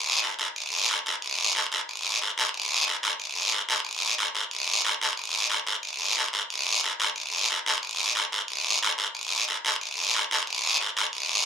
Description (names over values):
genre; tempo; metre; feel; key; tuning
latin; 182 BPM; 4/4; straight; none; none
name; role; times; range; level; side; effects
guiro; percussion; 0.2-11.5 s; none; -23 LUFS; equal; none
room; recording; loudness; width
light reverb; close, detailed microphones; -23 LUFS; side -8 dB against mid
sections
0.0-1.9 A section; 1.9-11.5 B section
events
none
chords
none